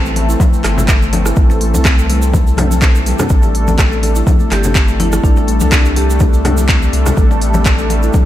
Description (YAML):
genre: afro house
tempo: 124 BPM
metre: 4/4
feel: swing 54% on 16ths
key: unclear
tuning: A4 = 442 Hz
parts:
  - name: warm analog pad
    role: sustained chords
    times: 0.0-8.3 s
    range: E3 to A4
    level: -22 LUFS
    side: left 2 dB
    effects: chorus, tremolo, sidechain pumping
  - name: kalimba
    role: arpeggios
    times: 0.0-8.1 s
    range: E3 to E4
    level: -23 LUFS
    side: left 3 dB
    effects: sidechain pumping, ping-pong delay
  - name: mellow synth brass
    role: stabs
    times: 0.0-8.0 s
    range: E3 to A4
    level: -24 LUFS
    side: right 1 dB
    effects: chorus, sidechain pumping, ping-pong delay
  - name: round analog bass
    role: bass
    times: 0.0-8.1 s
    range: G1 to C2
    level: -15 LUFS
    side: equal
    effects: sidechain pumping
  - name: tube shaker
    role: percussion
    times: 0.1-8.2 s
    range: none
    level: -29 LUFS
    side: right 6 dB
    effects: none
  - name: afro-pop drum kit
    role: drums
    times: 0.2-8.0 s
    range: handclaps, hi-hat, rim click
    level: -20 LUFS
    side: equal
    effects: none
  - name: congas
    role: percussion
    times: 0.2-8.2 s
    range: none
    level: -21 LUFS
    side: left 3 dB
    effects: none
  - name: electronic kick drum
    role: drums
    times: 0.4-8.2 s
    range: none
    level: -12 LUFS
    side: equal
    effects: overdrive
  - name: marimba with medium hard mallets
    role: melody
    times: 3.9-6.4 s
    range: D4 to A4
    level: -24 LUFS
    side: equal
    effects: ping-pong delay
room: light reverb, small room ambience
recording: none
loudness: -10 LUFS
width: side -13 dB against mid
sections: 0.0-8.3 A section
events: none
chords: 0.0 Am; 3.3 Gsus2